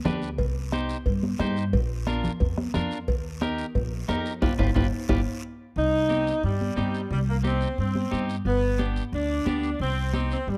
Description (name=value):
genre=latin, cumbia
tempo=179 BPM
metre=4/4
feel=straight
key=C harmonic minor from 5.8 s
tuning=A4 = 440 Hz
part: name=clean electric guitar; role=accompaniment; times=0.0-10.4 s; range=B3 to C5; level=-36 LUFS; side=equal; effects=spring reverb
part: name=upright bass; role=bass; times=0.1-10.6 s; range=G1 to G2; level=-30 LUFS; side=equal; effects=none
part: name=bombo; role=percussion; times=0.1-5.2 s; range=none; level=-31 LUFS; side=equal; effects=none
part: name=congas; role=percussion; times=0.1-10.3 s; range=none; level=-34 LUFS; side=equal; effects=none
part: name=guiro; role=percussion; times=0.1-10.6 s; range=none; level=-48 LUFS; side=equal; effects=none
part: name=timbales and cowbell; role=percussion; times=0.1-5.2 s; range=none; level=-35 LUFS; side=equal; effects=none
part: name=edgy saxophone section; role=melody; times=5.8-10.6 s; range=G3 to Eb4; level=-29 LUFS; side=equal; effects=slapback echo
room=light reverb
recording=dry, close 1970s-style studio recording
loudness=-26 LUFS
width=mono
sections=0.0-5.8 A section; 5.8-10.6 B section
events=band accent 4.4-5.8; drum fill 4.8-5.8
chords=0.4 Cm; 1.7 Bb; 3.1 Eb; 4.4 G7; 5.8 Cm; 8.5 G; 9.8 Cm